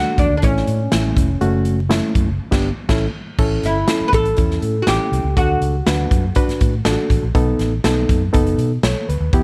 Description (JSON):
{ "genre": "uptempo 1960s-style soul", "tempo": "121 BPM", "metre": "4/4", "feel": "straight", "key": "unclear", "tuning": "A4 = 439 Hz", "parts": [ { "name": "oud", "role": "melody", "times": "0.0-6.8 s", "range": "C#4 to B4", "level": "-23 LUFS", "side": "equal", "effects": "none" }, { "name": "barky reed electric piano", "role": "accompaniment", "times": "0.0-9.4 s", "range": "A3 to C#5", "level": "-24 LUFS", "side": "equal", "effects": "overdrive" }, { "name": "vintage muted fingered electric bass", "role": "bass", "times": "0.0-9.4 s", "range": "F1 to B2", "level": "-23 LUFS", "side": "equal", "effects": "none" }, { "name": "swinging big-band drum kit", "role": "drums", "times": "0.2-9.4 s", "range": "crash cymbal, hi-hat, kick drum, snare drum", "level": "-22 LUFS", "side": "equal", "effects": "none" } ], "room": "light reverb", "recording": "dark, warm production, vinyl crackle", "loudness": "-18 LUFS", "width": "mono", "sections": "0.0-3.4 A section; 3.4-9.4 B section", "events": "band accent 2.4-3.4", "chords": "0.4 A; 1.4 F#m; 2.4 G; 2.9 A; 5.4 D; 7.3 B7", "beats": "0.43 0.92 | 1.41 1.91 2.40 2.90 | 3.39 3.88 4.38 4.87 | 5.37 5.86 6.36 6.85 | 7.35 7.84 8.34 8.84 | 9.33" }